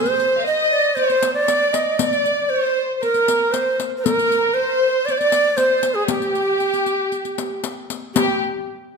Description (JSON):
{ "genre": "Arabic maqam ensemble", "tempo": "117 BPM", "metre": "4/4", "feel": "straight", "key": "G maqam kurd", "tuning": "A4 = 439 Hz", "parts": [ { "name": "breathy reedy ney", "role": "melody", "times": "0.0-8.4 s", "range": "G4 to Eb5", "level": "-19 LUFS", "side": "right 2 dB", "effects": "tape echo" }, { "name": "warm chamber violin section", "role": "second line", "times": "0.0-8.4 s", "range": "G4 to F5", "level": "-22 LUFS", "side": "left 1 dB", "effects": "none" }, { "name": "riq", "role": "percussion", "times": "0.1-8.4 s", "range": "none", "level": "-25 LUFS", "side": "left 8 dB", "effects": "none" } ], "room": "moderate recital hall reverb, RT60 1.3 s", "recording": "none", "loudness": "-17 LUFS", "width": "side -4 dB against mid", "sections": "0.0-8.2 A section", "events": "none", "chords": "none" }